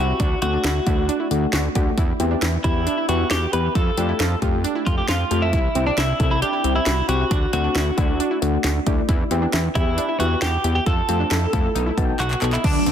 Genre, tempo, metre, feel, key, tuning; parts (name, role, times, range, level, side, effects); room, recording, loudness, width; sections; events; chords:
synth-pop; 135 BPM; 4/4; straight; E minor; A4 = 440 Hz
twelve-string electric guitar; melody; 0.0-12.9 s; D4 to B4; -24 LUFS; equal; ping-pong delay
soft electric-piano-like synth keys; accompaniment; 0.0-12.9 s; A3 to A5; -26 LUFS; left 3 dB; chorus
analog pluck; arpeggios; 0.0-12.9 s; C4 to G4; -29 LUFS; right 3 dB; chorus, ping-pong delay
fat analog bass; bass; 0.0-12.9 s; B1 to F2; -23 LUFS; equal
house drum kit; drums; 0.2-12.9 s; crash cymbal, handclaps, hi-hat, kick drum, snare drum; -23 LUFS; equal; overdrive
string machine, violas; sustained chords; 12.6-12.9 s; F#3 to D4; -21 LUFS; right 2 dB; ensemble chorus
moderate plate reverb, RT60 1.9 s; dense, heavily limited modern master; -18 LUFS; side -9 dB against mid
0.0-12.6 A section
synth keys fill 11.8-12.6; drum fill 12.2-12.6
0.2 D; 2.0 Em; 3.8 Fadd9; 5.5 C; 7.3 D; 9.1 Em; 10.9 Fadd9; 11.8 B